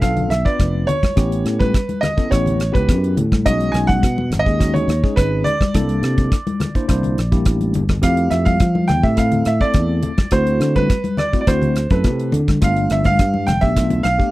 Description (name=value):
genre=electric jazz fusion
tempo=105 BPM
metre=4/4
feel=straight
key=G mixolydian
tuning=A4 = 440 Hz
part: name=bright grand piano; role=melody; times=0.0-14.3 s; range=B4 to G#5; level=-21 LUFS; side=right 2 dB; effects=none
part: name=tine electric piano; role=accompaniment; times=0.0-14.3 s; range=G#3 to C5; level=-23 LUFS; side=left 2 dB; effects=fast stereo tremolo
part: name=fingered electric bass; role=bass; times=0.0-14.2 s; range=F1 to F3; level=-19 LUFS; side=equal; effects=none
part: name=damped 70s drum kit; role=drums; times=0.0-14.3 s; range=hi-hat, kick drum, rim click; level=-18 LUFS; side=equal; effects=none
part: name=congas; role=percussion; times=0.2-14.0 s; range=none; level=-24 LUFS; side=left 3 dB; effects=none
room=little or no reverb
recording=dry, close 1970s-style studio recording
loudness=-15 LUFS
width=side -17 dB against mid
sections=0.0-14.3 A section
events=drum fill 7.3-8.0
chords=0.0 G9 (rootless); 1.2 A9; 3.5 B6; 5.8 C13; 8.0 Fmaj9; 10.3 D7; 12.6 G13